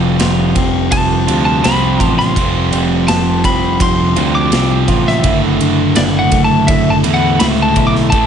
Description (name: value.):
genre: quiet-loud alternative rock.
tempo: 83 BPM.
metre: 4/4.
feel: straight.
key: unclear.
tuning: A4 = 440 Hz.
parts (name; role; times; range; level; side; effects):
electric guitar through a small old amp; arpeggios; 0.0-8.3 s; D2 to F4; -20 LUFS; equal; slapback echo.
crunchy overdriven guitar; riff; 0.0-8.3 s; D2 to A4; -18 LUFS; right 13 dB; none.
thick fuzz guitar; riff; 0.0-8.3 s; D2 to A3; -18 LUFS; left 8 dB; distortion.
growling picked electric bass; bass; 0.0-8.3 s; F1 to E2; -18 LUFS; right 1 dB; overdrive.
big rock drum kit; drums; 0.2-8.3 s; kick drum, ride cymbal, snare drum; -18 LUFS; right 1 dB; none.
lightly driven lead guitar; melody; 0.9-8.3 s; D5 to D6; -17 LUFS; left 2 dB; slapback echo.
room: light reverb.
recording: nothing above 10.5 kHz.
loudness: -10 LUFS.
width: side -8 dB against mid.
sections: 0.0-8.3 A section.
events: lead electric guitar solo 0.0-8.3.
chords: 0.0 Fadd9; 5.2 Dadd9/F#.